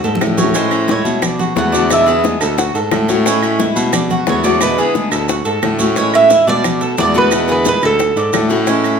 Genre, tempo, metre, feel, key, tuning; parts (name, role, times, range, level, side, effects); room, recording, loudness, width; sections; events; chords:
latin, Cuban son and guajira; 177 BPM; 4/4; straight; A major; A4 = 441 Hz
Cuban tres; arpeggios; 0.0-9.0 s; C#4 to D5; -20 LUFS; right 3 dB
warm baritone saxophone; bass; 0.0-9.0 s; D2 to B2; -18 LUFS; right 1 dB
bongos; percussion; 0.0-8.8 s; -24 LUFS; left 6 dB
congas; percussion; 0.0-9.0 s; -22 LUFS; left 2 dB
maracas; percussion; 0.0-9.0 s; -27 LUFS; right 5 dB
picked steel-string acoustic guitar; accompaniment; 0.2-9.0 s; B2 to F#4; -20 LUFS; left 7 dB
claves; percussion; 0.2-9.0 s; -27 LUFS; right 9 dB
Cuban tres; melody; 0.6-2.2, 4.3-8.5 s; A4 to F#5; -15 LUFS; right 3 dB
moderate large studio reverb, RT60 1.2 s; -12 LUFS; side -6 dB against mid
0.0-6.0 A section; 6.0-9.0 B section
drum fill 0.0-0.6; Cuban tres solo 0.0-6.0
0.0 Dmaj7; 0.6 Amaj7; 1.2 Bm7; 1.9 E7; 2.6 Dmaj7; 3.3 Amaj7; 3.9 Bm7; 4.6 E7; 5.3 Dmaj7; 6.0 Amaj7; 6.6 Bm7; 7.3 E7; 8.0 Dmaj7